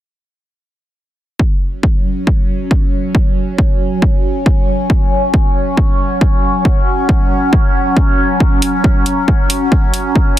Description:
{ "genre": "driving peak-time techno", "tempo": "137 BPM", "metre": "4/4", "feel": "straight", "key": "unclear", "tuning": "A4 = 441 Hz", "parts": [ { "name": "overtone-sweeping drone", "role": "drone", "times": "2.0-10.4 s", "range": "F#3 to C#4", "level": "-17 LUFS", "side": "equal", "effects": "chorus, built-in reverb, phaser, sidechain pumping" }, { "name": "electronic kick drum", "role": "drums", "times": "1.4-10.2 s", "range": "none", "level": "-12 LUFS", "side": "equal", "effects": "overdrive" }, { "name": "electronic hi-hat", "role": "drums", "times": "8.6-10.4 s", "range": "none", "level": "-17 LUFS", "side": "equal", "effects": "sidechain pumping on hats" } ], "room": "little or no reverb", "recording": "dense, heavily limited modern master", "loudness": "-11 LUFS", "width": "side -13 dB against mid", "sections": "1.4-10.4 A section", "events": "none", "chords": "1.4 F#5" }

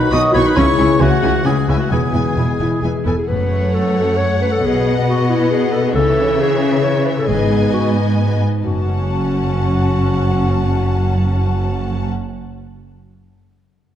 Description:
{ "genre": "cinematic, heroic adventure film score", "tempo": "134 BPM", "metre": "3/4", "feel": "straight", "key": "F# dorian", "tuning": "A4 = 440 Hz", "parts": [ { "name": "warm clarinet", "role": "second line", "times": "0.0-12.1 s", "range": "G#3 to C#5", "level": "-20 LUFS", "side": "left 2 dB", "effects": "none" }, { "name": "warm oboe", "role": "second line", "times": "0.0-2.8 s", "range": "E4 to D#5", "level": "-20 LUFS", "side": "left 1 dB", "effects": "none" }, { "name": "warm symphonic violin section", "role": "second line", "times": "0.0-12.1 s", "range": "C#5 to D#6", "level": "-26 LUFS", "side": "left 3 dB", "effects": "none" }, { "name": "clear trombone section", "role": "sustained chords", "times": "0.0-3.1 s", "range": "B2 to F#3", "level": "-27 LUFS", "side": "right 3 dB", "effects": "none" }, { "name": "warm French horn section", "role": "sustained chords", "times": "0.0-3.0 s", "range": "E3 to G#4", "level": "-25 LUFS", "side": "left 4 dB", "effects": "none" }, { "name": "concert harp", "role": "arpeggios", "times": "0.0-12.6 s", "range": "F#2 to E5", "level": "-24 LUFS", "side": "left 7 dB", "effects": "none" }, { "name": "warm symphonic violin section", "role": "melody", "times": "0.1-12.1 s", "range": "E5 to B5", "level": "-29 LUFS", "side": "left 4 dB", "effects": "none" }, { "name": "warm symphonic viola section", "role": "accompaniment", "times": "0.1-12.1 s", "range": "E3 to F#4", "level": "-24 LUFS", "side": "equal", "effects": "none" }, { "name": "rich symphonic double bass section", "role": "bass", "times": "0.1-12.1 s", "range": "E1 to C#2", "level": "-21 LUFS", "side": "right 2 dB", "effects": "none" }, { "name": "warm symphonic cello section", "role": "bass", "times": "0.1-12.1 s", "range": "E2 to C#3", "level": "-19 LUFS", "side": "right 2 dB", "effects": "none" }, { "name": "timpani", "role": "percussion", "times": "8.7-12.2 s", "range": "none", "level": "barely audible", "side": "none", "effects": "none" } ], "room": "moderate scoring stage reverb, RT60 2.0 s", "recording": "dark, warm production", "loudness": "-14 LUFS", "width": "side -10 dB against mid", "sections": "0.0-3.3 A section; 3.3-8.6 B section; 8.6-11.3 C section", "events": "none", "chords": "0.0 B; 0.6 C#m; 1.9 E; 3.3 F#m; 4.6 B; 5.9 C#m; 7.3 G#m; 8.6 F#m" }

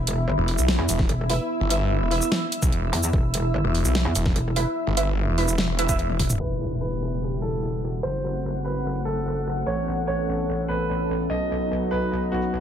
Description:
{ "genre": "heavy wobble dubstep", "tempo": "147 BPM", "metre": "4/4", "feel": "half-time", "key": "E harmonic minor", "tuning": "A4 = 441 Hz", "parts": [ { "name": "metallic wobble bass", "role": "bass", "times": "0.0-12.6 s", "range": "E1 to E2", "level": "-26 LUFS", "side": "equal", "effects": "distortion, chorus, overdrive" }, { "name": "deep dark ambient pad", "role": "texture", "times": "0.0-12.6 s", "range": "G3 to E6", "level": "-30 LUFS", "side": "equal", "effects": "chorus, built-in reverb, sidechain pumping" }, { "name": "dubstep drum kit", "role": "drums", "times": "0.1-12.5 s", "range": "crash cymbal, hi-hat, shaker, snare drum, toms", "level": "-27 LUFS", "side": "equal", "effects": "low-pass filter on hats, low-pass filter on perc, low-pass filter on snare, low-pass filter on toms, low-pass filter on cymbals" }, { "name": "snarling distorted saw bass", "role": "bass", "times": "0.4-6.4 s", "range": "E1 to B1", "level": "-23 LUFS", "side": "equal", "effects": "distortion, overdrive" }, { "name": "electronic kick drum", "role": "drums", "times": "1.0-6.3 s", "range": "none", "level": "-23 LUFS", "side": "equal", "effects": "overdrive" }, { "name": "orchestra-hit-like synth stab", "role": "stabs", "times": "1.3-6.0 s", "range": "E4 to E5", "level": "-29 LUFS", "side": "right 3 dB", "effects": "built-in reverb, dub echo" }, { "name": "warm grand piano", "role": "melody", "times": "6.4-12.6 s", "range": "F#4 to D#5", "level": "-30 LUFS", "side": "right 1 dB", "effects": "dub echo" }, { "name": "lush unison pad", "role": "sustained chords", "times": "6.4-12.6 s", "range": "E3 to G4", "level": "-32 LUFS", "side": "equal", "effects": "chorus, sidechain pumping" }, { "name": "impact", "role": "sound effects", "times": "6.4-8.0 s", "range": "none", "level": "-34 LUFS", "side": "equal", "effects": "none" } ], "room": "light reverb, digital ambience", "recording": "low-pass filter", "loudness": "-22 LUFS", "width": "side -9 dB against mid", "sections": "0.0-6.4 A section; 6.4-12.6 B section", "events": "drop 0.0-6.4; drum fill 6.1-6.4; impact 6.4-8.0; filter sweep on analog synth pad 6.4-12.6; filter sweep 6.4-12.6", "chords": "0.0 E5; 6.4 Emadd9; 8.0 F#dim; 9.7 Aadd9; 11.3 B" }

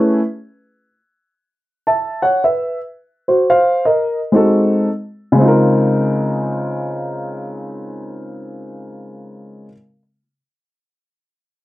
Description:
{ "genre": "hip hop", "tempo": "85 BPM", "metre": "4/4", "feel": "swing 62% on 16ths", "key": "Db major", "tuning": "A4 = 440 Hz", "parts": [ { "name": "dark upright piano", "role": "solo", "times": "0.0-9.7 s", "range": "Db3 to A5", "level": "-15 LUFS", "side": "equal", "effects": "none" } ], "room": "moderate studio ambience, RT60 0.5 s", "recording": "dark, warm production", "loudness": "-14 LUFS", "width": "side -16 dB against mid", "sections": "0.0-5.4 A section; 5.4-8.2 B section", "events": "none", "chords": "0.0 Aadd9; 2.6 N.C.; 4.0 Ab7b9; 5.4 Dbmaj13" }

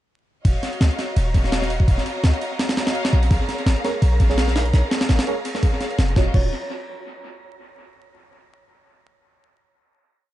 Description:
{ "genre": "drum and bass, jungle", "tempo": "168 BPM", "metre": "4/4", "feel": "swing 55% on 16ths", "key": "Eb minor", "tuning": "A4 = 445 Hz", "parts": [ { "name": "dark studio string section", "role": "sustained chords", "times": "0.4-6.3 s", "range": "Gb4 to F5", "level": "-28 LUFS", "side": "left 1 dB", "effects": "vintage 12-bit sampler grit" }, { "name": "warm 808-style bass", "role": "bass", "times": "0.4-6.5 s", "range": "Eb1 to Db2", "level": "-18 LUFS", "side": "equal", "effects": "none" }, { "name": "jungle sampler-style drum kit", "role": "drums", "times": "0.5-6.4 s", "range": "crash cymbal, kick drum, ride cymbal, snare drum", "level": "-21 LUFS", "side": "equal", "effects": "dub echo" }, { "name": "wind-like tuned noise texture", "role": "texture", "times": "0.7-6.2 s", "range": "Bb5", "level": "-36 LUFS", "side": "right 4 dB", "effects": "built-in reverb" }, { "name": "deep mellow chord stab", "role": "stabs", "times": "3.8-6.5 s", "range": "F4 to Db5", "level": "-29 LUFS", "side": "right 4 dB", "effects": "chorus, phaser, dub echo" } ], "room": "light reverb", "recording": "echo-heavy mix, vinyl crackle, nothing above 10.7 kHz", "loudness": "-18 LUFS", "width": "side -14 dB against mid", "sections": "0.5-6.2 drop; 6.2-7.6 final chord", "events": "drop 0.5-6.2", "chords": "0.5 Ebm9; 3.3 Bbm7; 6.2 Ebm9" }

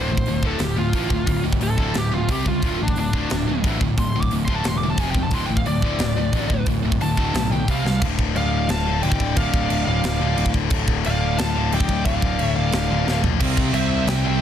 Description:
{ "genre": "heavy metal", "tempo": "178 BPM", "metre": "4/4", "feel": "straight", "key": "D minor", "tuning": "A4 = 441 Hz", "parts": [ { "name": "bluesy overdriven lead guitar", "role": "melody", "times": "0.0-14.4 s", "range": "D4 to D6", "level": "-27 LUFS", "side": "right 1 dB", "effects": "distortion, tape echo" }, { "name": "high-gain distorted guitar", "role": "riff", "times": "0.0-14.4 s", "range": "D2 to C4", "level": "-25 LUFS", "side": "left 10 dB", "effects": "distortion" }, { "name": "scooped high-gain guitar", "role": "riff", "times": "0.0-8.0, 13.4-14.4 s", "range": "D2 to C4", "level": "-26 LUFS", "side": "right 9 dB", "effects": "distortion" }, { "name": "fuzz picked electric bass", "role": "bass", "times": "0.0-14.4 s", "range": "D1 to C#2", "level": "-24 LUFS", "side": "equal", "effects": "overdrive" }, { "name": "tight metal drum kit", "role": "drums", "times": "0.2-14.2 s", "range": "china cymbal, crash cymbal, hi-hat, kick drum, snare drum, toms", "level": "-24 LUFS", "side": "right 1 dB", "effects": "none" }, { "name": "high-gain lead guitar", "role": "second line", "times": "8.4-14.4 s", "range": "C5 to F5", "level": "-32 LUFS", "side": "right 4 dB", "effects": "distortion" } ], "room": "little or no reverb", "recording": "dense, heavily limited modern master", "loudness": "-18 LUFS", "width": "side -9 dB against mid", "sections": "0.0-8.0 A section; 8.0-14.4 B section", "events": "lead electric guitar solo 0.0-8.0; drum fill 7.9, 13.1-13.4", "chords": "0.0 Dm; 2.3 C5; 2.6 D5; 5.0 F5; 5.3 D5; 7.7 C5; 8.0 Dm; 13.4 C" }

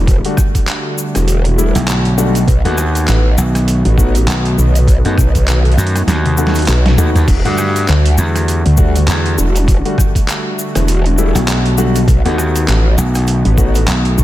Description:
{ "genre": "glitch hop", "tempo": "100 BPM", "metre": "4/4", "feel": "swing 58% on 16ths", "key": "E minor", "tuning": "A4 = 440 Hz", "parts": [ { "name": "warm analog pad", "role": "sustained chords", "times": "0.0-14.2 s", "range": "D3 to F#4", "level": "-21 LUFS", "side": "right 1 dB", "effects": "chorus, sidechain pumping" }, { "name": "growl bass", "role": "bass", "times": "0.0-14.2 s", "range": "E1 to D2", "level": "-12 LUFS", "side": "equal", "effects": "distortion, chorus, overdrive" }, { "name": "boom bap sampler-style drum kit", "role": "drums", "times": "0.1-14.2 s", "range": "crash cymbal, handclaps, hi-hat, rim click, snare drum, toms", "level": "-20 LUFS", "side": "equal", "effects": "overdrive" }, { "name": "electronic kick drum", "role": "drums", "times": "0.1-13.7 s", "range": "none", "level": "-13 LUFS", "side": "equal", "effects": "overdrive" }, { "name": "cabasa", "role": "percussion", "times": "0.1-14.2 s", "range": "none", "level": "-27 LUFS", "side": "left 3 dB", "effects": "none" }, { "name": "warm grand piano", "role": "stabs", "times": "0.3-13.8 s", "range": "G3 to F#4", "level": "-20 LUFS", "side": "left 2 dB", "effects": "vintage 12-bit sampler grit, sidechain pumping, ping-pong delay" }, { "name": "gritty slap bass", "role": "bass", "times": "1.8-14.2 s", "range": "B1 to G2", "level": "-14 LUFS", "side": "equal", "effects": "overdrive" } ], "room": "light reverb", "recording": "none", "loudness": "-10 LUFS", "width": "side -15 dB against mid", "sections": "0.0-14.2 A section", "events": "drum fill 6.1-7.3; kick drops out 6.7-7.3", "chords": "0.0 Em11; 2.5 B7; 7.3 Em11; 12.1 B7" }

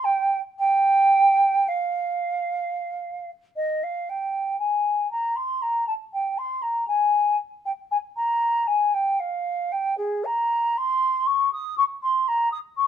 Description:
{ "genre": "classical, baroque-style fantasia for unaccompanied flute", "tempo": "57 BPM", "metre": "3/4", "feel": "uneven beats, rubato", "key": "F minor", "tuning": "A4 = 440 Hz", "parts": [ { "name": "mellow hollow silver concert flute", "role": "solo", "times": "0.0-12.9 s", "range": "Ab4 to Eb6", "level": "-21 LUFS", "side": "right 1 dB", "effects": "none" } ], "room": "light reverb", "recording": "none", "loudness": "-21 LUFS", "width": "side -9 dB against mid", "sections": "0.0-3.8 A section; 3.8-12.9 B section", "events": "none", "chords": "none" }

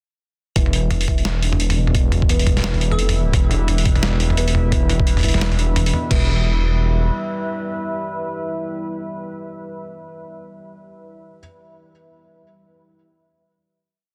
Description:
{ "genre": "half-time drum and bass", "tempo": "173 BPM", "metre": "4/4", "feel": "swing 58% on 16ths, half-time", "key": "E minor", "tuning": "A4 = 435 Hz", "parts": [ { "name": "deep dark ambient pad", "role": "sustained chords", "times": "2.4-9.3 s", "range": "G3 to E5", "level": "-31 LUFS", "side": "equal", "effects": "chorus, built-in reverb, sidechain pumping" }, { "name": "felt-muted upright piano", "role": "arpeggios", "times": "0.6-6.3 s", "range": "B2 to B3", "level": "-32 LUFS", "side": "equal", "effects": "vintage 12-bit sampler grit, tape echo" }, { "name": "dark detuned saw bass", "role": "bass", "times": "0.6-7.1 s", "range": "E1 to F1", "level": "-21 LUFS", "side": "equal", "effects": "tube saturation" }, { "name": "boom bap sampler-style drum kit", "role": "drums", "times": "0.6-6.2 s", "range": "crash cymbal, hi-hat, snare drum, toms", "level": "-25 LUFS", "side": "equal", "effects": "none" }, { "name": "electronic kick drum", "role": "drums", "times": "0.6-6.2 s", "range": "none", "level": "-21 LUFS", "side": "equal", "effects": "none" }, { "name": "glassy wavetable pluck", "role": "melody", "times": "2.9-3.3 s", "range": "A4", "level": "-35 LUFS", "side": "equal", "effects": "chorus, tape echo" } ], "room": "little or no reverb", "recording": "dense, heavily limited modern master", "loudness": "-19 LUFS", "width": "mono", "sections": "0.6-6.1 drop; 6.1-8.9 final chord", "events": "drop 0.6-6.1", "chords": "0.6 Em" }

